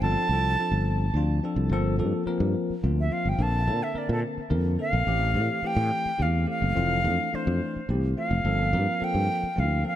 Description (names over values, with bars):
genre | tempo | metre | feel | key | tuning
jazz | 71 BPM (dotted quarters) | 6/8 | straight | G dorian | A4 = 442 Hz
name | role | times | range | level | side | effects
reedy silver concert flute | melody | 0.0-10.0 s | A4 to A5 | -28 LUFS | right 1 dB | digital delay
barky tine electric piano | accompaniment | 0.0-10.0 s | D3 to Bb4 | -30 LUFS | left 2 dB | wide subtle chorus
sustaining fretless electric bass | bass | 0.0-9.8 s | F1 to Bb2 | -25 LUFS | equal | none
room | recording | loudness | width
light reverb, small room ambience | bright 1980s-style digital production | -23 LUFS | side -12 dB against mid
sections
0.0-1.7 A section; 1.7-10.0 B section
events
flute solo 1.7-10.0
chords
0.0 F6/G; 1.7 Gm11; 3.4 Bbmaj9; 5.1 Am7; 6.8 Fmaj7; 8.4 Gm11